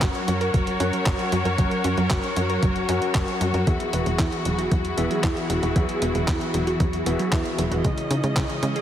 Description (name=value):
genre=italo disco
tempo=115 BPM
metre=4/4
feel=straight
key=unclear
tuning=A4 = 440 Hz
part: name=clear studio string section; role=sustained chords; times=0.0-8.8 s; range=E3 to D#5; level=-27 LUFS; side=left 1 dB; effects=none
part: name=wide unison pluck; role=arpeggios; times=0.0-8.8 s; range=F#3 to A#4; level=-29 LUFS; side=right 3 dB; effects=cassette tape, ping-pong delay
part: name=overdriven tine electric piano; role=stabs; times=0.0-8.8 s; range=C#3 to F#5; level=-29 LUFS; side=left 3 dB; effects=medium tremolo, ping-pong delay
part: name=tight sequencer bass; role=bass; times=0.0-8.8 s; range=E1 to C#3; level=-27 LUFS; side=equal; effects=ping-pong delay
part: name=clean 12-bit digital drum machine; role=drums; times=0.0-8.8 s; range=handclaps, hi-hat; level=-31 LUFS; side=equal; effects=none
part: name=electronic kick drum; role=drums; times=0.0-8.5 s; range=none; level=-24 LUFS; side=equal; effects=none
room=moderate lush hall reverb, RT60 2.4 s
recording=heavily compressed radio sound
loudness=-20 LUFS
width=side -10 dB against mid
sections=0.0-8.8 A section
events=none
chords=0.0 F#; 3.7 Eadd9; 7.8 C#madd9